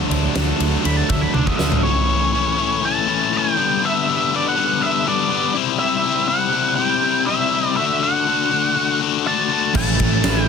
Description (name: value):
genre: quiet-loud alternative rock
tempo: 122 BPM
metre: 4/4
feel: straight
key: unclear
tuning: A4 = 440 Hz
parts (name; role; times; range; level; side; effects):
- distorted electric guitar; riff; 0.0-10.5 s; G2 to F#4; -20 LUFS; left 13 dB; overdrive
- distorted electric guitar; riff; 0.0-1.8, 9.7-10.5 s; A2 to E4; -24 LUFS; right 16 dB; distortion
- overdriven picked electric bass; bass; 0.1-1.8, 9.8-10.5 s; A1 to D2; -21 LUFS; right 1 dB; none
- big rock drum kit; drums; 0.1-1.8, 9.7-10.4 s; crash cymbal, kick drum, ride cymbal, snare drum, toms; -21 LUFS; equal; soft clipping on kick
- octave-fuzz lead guitar; melody; 0.9-10.5 s; C#5 to B5; -21 LUFS; right 2 dB; distortion, digital delay
- fuzz guitar; riff; 9.7-10.5 s; A2 to A3; -28 LUFS; right 3 dB; none
room: light reverb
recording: dense, heavily limited modern master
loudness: -16 LUFS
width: side -6 dB against mid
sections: 0.0-1.8 A section; 1.8-10.5 B section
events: lead electric guitar solo 0.0-1.8; drum fill 1.4-1.8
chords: 0.0 D; 1.8 A; 3.6 G; 5.6 C; 7.8 D; 9.8 A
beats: 0.36 0.85 1.35 | 1.85 2.35 2.84 3.34 | 3.83 4.33 4.82 5.31 | 5.81 6.30 6.79 7.29 | 7.78 8.27 8.77 9.26 | 9.75 10.24